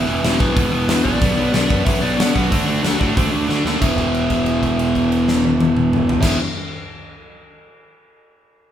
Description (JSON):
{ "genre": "punk rock", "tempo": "184 BPM", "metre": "4/4", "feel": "straight", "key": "unclear", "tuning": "A4 = 440 Hz", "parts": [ { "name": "biting lead guitar", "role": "melody", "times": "0.0-6.4 s", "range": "B3 to F#5", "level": "-26 LUFS", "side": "equal", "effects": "overdrive" }, { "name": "overdriven electric guitar", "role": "riff", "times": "0.0-6.4 s", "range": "E2 to D4", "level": "-18 LUFS", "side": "equal", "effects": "none" }, { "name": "fuzz picked electric bass", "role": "bass", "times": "0.0-6.4 s", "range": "E1 to D3", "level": "-24 LUFS", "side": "equal", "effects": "overdrive" }, { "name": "big rock drum kit", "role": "drums", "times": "0.2-6.3 s", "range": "crash cymbal, hi-hat, kick drum, snare drum, toms", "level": "-20 LUFS", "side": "left 1 dB", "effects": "none" } ], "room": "moderate large studio reverb, RT60 0.9 s", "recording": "band playing live in one room", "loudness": "-15 LUFS", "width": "side -10 dB against mid", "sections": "0.0-3.8 A section; 3.8-6.4 B section", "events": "drum fill 3.5-3.8; held note 3.8-6.2", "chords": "0.0 E5; 1.2 Bm; 2.5 D; 3.8 E5" }